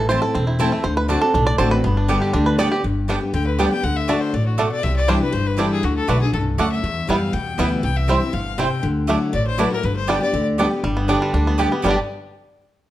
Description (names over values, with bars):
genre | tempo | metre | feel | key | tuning
bluegrass | 240 BPM | 4/4 | straight | G major | A4 = 441 Hz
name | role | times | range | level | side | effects
bluegrass banjo | melody | 0.0-12.0 s | E3 to D5 | -23 LUFS | right 3 dB | none
picked steel-string acoustic guitar | accompaniment | 0.0-11.9 s | E2 to G4 | -22 LUFS | left 2 dB | none
upright bass | bass | 0.0-12.0 s | E1 to F#2 | -22 LUFS | equal | none
mandolin | stabs | 0.1-11.9 s | A3 to A5 | -25 LUFS | right 5 dB | none
clear fiddle | melody | 3.3-12.0 s | F#4 to G5 | -25 LUFS | left 4 dB | none
room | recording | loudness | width
moderate large studio reverb, RT60 1.0 s | dark, warm production | -17 LUFS | side -14 dB against mid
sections
0.0-2.8 A section; 2.8-10.8 B section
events
five-string banjo solo 0.0-2.8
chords
0.0 Am; 0.8 D7; 1.8 G; 3.8 D; 4.8 Cadd9; 5.8 D; 6.8 Em; 7.8 C; 8.8 Dadd9; 9.8 G